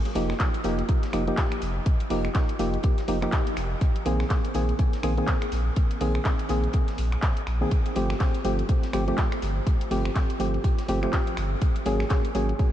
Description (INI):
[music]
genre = deep house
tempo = 123 BPM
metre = 4/4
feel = swing 59% on 16ths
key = unclear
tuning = A4 = 440 Hz
[part]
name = percussive organ stab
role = stabs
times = 0.1-12.5 s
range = Eb3 to Ab4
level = -28 LUFS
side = equal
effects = chorus, sidechain pumping, analog delay
[part]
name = deep reggae drum kit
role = drums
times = 0.1-12.7 s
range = hi-hat, snare drum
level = -47 LUFS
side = left 2 dB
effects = none
[part]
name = house drum kit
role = drums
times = 0.1-12.7 s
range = finger snaps, handclaps, hi-hat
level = -34 LUFS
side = equal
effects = vintage 12-bit sampler grit
[part]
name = warm sub bass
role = bass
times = 0.2-12.5 s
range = F1 to Bb1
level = -27 LUFS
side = equal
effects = sidechain pumping
[part]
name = electronic kick drum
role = drums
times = 0.4-12.7 s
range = none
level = -24 LUFS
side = equal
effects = vintage 12-bit sampler grit
[sound]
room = moderate huge ambient reverb, RT60 5.4 s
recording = dreamy mix soaked in reverb, cassette tape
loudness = -23 LUFS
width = side -12 dB against mid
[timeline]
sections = 0.0-12.7 A section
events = none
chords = 0.0 F9sus4; 3.8 Bb9sus4; 7.7 G9sus4; 11.6 Ab9sus4